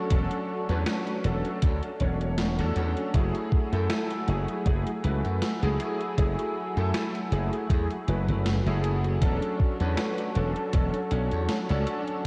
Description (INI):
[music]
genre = vaporwave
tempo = 79 BPM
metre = 4/4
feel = swing 54% on 16ths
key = F# minor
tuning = A4 = 440 Hz
[part]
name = clear electric grand piano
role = accompaniment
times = 0.0-12.3 s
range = F#3 to C#5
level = -33 LUFS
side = equal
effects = ensemble chorus, vintage 12-bit sampler grit, tape echo
[part]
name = warbly tape-like pad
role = sustained chords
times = 0.0-12.3 s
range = A3 to E6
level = -38 LUFS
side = equal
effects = chorus, built-in reverb
[part]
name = slap bass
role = bass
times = 0.1-11.8 s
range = E1 to F#2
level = -29 LUFS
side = equal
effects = none
[part]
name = electronic kick drum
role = drums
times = 0.1-10.9 s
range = none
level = -26 LUFS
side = equal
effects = studio reverb
[part]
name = gated 80s digital drum machine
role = drums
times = 0.1-12.2 s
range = hi-hat, snare drum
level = -37 LUFS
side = equal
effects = gated reverb, gated reverb snare, studio reverb
[sound]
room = wet lush hall reverb, RT60 2.9 s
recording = dreamy mix soaked in reverb, cassette tape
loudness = -27 LUFS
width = mono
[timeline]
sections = 0.0-12.3 A section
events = none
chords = 0.0 E13sus4; 3.1 F#m9; 9.2 E13sus4